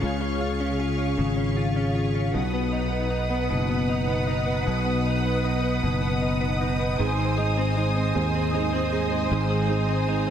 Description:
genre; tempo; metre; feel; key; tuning
pop; 52 BPM (dotted quarters); 6/8; straight; unclear; A4 = 441 Hz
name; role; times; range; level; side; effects
direct-recorded clean electric guitar; accompaniment; 0.0-10.3 s; Ab2 to F4; -26 LUFS; left 2 dB; analog chorus
bright studio string section; sustained chords; 0.0-10.3 s; Ab4 to Eb6; -30 LUFS; right 1 dB; none
sustaining fretless electric bass; bass; 0.0-10.3 s; Gb1 to Eb2; -26 LUFS; right 1 dB; lush chorus
fingerpicked steel-string acoustic guitar; arpeggios; 7.0-10.3 s; Ab2 to Ab4; -28 LUFS; right 6 dB; diffuse ambient delay
room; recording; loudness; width
moderate lush hall reverb, RT60 2.5 s; dreamy mix soaked in reverb; -22 LUFS; side -9 dB against mid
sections
0.0-10.3 A section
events
none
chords
0.0 Db; 2.3 Cb; 7.0 Ab

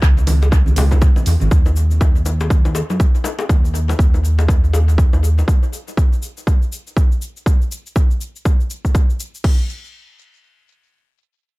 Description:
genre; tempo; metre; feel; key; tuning
afro house; 121 BPM; 4/4; swing 59% on 16ths; C# minor; A4 = 441 Hz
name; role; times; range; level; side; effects
smooth synth bass; bass; 0.0-5.4 s; G#1 to F#2; -15 LUFS; equal; sidechain pumping
electronic kick drum; drums; 0.0-9.6 s; none; -14 LUFS; equal; overdrive
house drum kit; drums; 0.0-9.6 s; cabasa, crash cymbal, hi-hat; -32 LUFS; left 1 dB; overdrive, tape echo
congas; percussion; 0.2-1.5 s; none; -26 LUFS; right 2 dB; tape echo
bongos; percussion; 0.3-5.5 s; none; -27 LUFS; left 4 dB; tape echo
room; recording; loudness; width
digital ambience; echo-heavy mix; -14 LUFS; side -22 dB against mid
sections
0.0-9.4 A section; 9.4-11.6 B section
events
none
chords
none

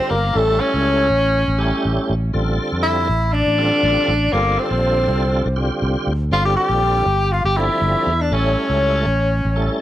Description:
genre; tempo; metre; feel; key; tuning
jazz; 120 BPM; 4/4; straight; G dorian; A4 = 440 Hz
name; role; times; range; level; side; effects
warm tenor saxophone; melody; 0.0-9.8 s; A3 to G4; -19 LUFS; equal; none
reedy concert flute; second line; 0.0-9.8 s; A4 to G5; -25 LUFS; left 3 dB; plate reverb
tonewheel organ; accompaniment; 0.0-9.8 s; D3 to A4; -24 LUFS; right 1 dB; slow rotary speaker, overdrive, chorus vibrato
sustaining fretless electric bass; bass; 0.1-9.7 s; G1 to F2; -20 LUFS; equal; none
room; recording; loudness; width
light reverb; none; -16 LUFS; side -13 dB against mid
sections
0.0-9.8 A section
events
tonewheel organ fill 9.6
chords
0.4 A7; 2.3 Dm7/A; 4.3 Gm11; 5.1 Csus24; 6.3 Gm11; 8.3 A7

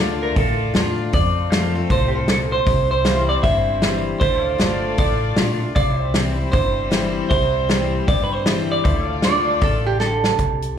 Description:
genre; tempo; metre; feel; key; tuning
honky-tonk and classic country; 155 BPM; 4/4; swing 61% on 8ths; D minor; A4 = 442 Hz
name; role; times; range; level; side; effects
clean electric guitar; melody; 0.0-10.0 s; G4 to E5; -22 LUFS; right 2 dB; plate reverb, slapback echo, tape echo
picked steel-string acoustic guitar; accompaniment; 0.0-10.8 s; F2 to F4; -25 LUFS; left 4 dB; plate reverb, slapback echo
pedal steel guitar; sustained chords; 0.0-10.4 s; C5 to F5; -33 LUFS; left 2 dB; plate reverb
rich studio violin section; sustained chords; 0.0-10.4 s; G3 to D5; -28 LUFS; left 2 dB; plate reverb
upright bass; bass; 0.0-10.8 s; G1 to F2; -24 LUFS; equal; none
natural country drum kit; drums; 0.4-10.7 s; hi-hat, kick drum, snare drum; -21 LUFS; equal; none
lap resonator guitar; second line; 9.2-10.3 s; G4 to D5; -20 LUFS; right 4 dB; plate reverb, slapback echo
room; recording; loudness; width
moderate club reverb, RT60 0.8 s; live gig heard through the venue's PA, club reverb; -16 LUFS; side -8 dB against mid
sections
0.0-10.4 A section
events
drum fill 10.0-10.4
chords
0.0 Dm; 1.1 F; 2.7 C; 4.2 Dm; 5.8 C; 8.8 Dm

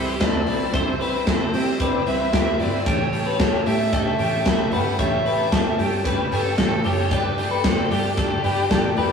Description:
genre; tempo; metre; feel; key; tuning
jangly indie pop; 113 BPM; 4/4; straight; unclear; A4 = 440 Hz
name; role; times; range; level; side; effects
biting lead guitar; melody; 0.0-9.1 s; G4 to F#5; -27 LUFS; equal; overdrive
biting overdriven guitar; accompaniment; 0.0-9.1 s; A2 to B4; -30 LUFS; right 2 dB; spring reverb
combo organ; accompaniment; 0.0-9.1 s; C4 to D5; -26 LUFS; right 1 dB; none
twelve-string electric guitar; arpeggios; 0.0-9.1 s; F#4 to C#5; -28 LUFS; left 4 dB; none
vintage muted picked electric bass; bass; 0.0-9.1 s; F#1 to C3; -28 LUFS; right 1 dB; none
big rock drum kit; drums; 0.2-9.1 s; hi-hat, kick drum, ride cymbal, snare drum; -23 LUFS; left 1 dB; none
room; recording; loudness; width
wet stone room reverb, RT60 1.2 s; rough rehearsal-room recording, tube saturation, small room ambience; -18 LUFS; side -6 dB against mid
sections
0.0-9.1 A section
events
none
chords
0.0 Cmaj7; 2.9 A7; 7.1 Gsus2

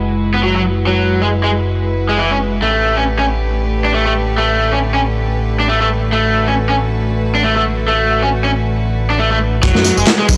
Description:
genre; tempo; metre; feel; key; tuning
breakbeat, breaks; 137 BPM; 4/4; swing 57% on 16ths; unclear; A4 = 440 Hz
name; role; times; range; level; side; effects
rich chamber string section; sustained chords; 0.0-10.4 s; D3 to B4; -23 LUFS; equal; sidechain pumping, low-pass filter
fat analog bass; bass; 0.0-10.4 s; F#1 to F#2; -20 LUFS; equal; tube saturation
raw garage guitar; riff; 0.3-10.2 s; E3 to D4; -18 LUFS; equal; overdrive, tube saturation, vintage 12-bit sampler grit, low-pass filter, analog delay
crunchy breakbeat drum kit; drums; 9.6-10.4 s; hi-hat, kick drum, snare drum; -15 LUFS; equal; none
electronic tambourine and handclaps; drums; 9.6-10.4 s; none; -21 LUFS; equal; none
room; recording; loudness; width
light reverb, small room ambience; dry, gritty hardware recording, cassette tape, faint mains hum; -15 LUFS; mono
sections
0.0-9.6 A section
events
filter sweep on string section 0.0-9.6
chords
0.0 F#9sus4; 2.6 A9sus4; 9.6 F#9sus4

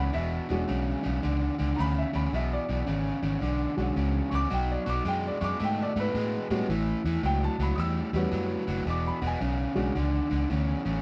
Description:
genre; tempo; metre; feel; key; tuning
electric blues shuffle; 110 BPM; 4/4; swing 65% on 8ths; E mixolydian; A4 = 440 Hz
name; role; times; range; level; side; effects
warm grand piano; accompaniment; 0.0-10.3 s; G3 to E6; -34 LUFS; equal; none
overdriven electric guitar; riff; 0.0-11.0 s; E2 to A3; -33 LUFS; equal; spring reverb
vintage muted fingered electric bass; bass; 0.0-11.0 s; E1 to A2; -32 LUFS; equal; none
room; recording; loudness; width
light reverb; band playing live in one room; -28 LUFS; mono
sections
0.0-11.0 A section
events
none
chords
0.0 E13; 4.5 B5; 6.7 A13; 8.9 E13

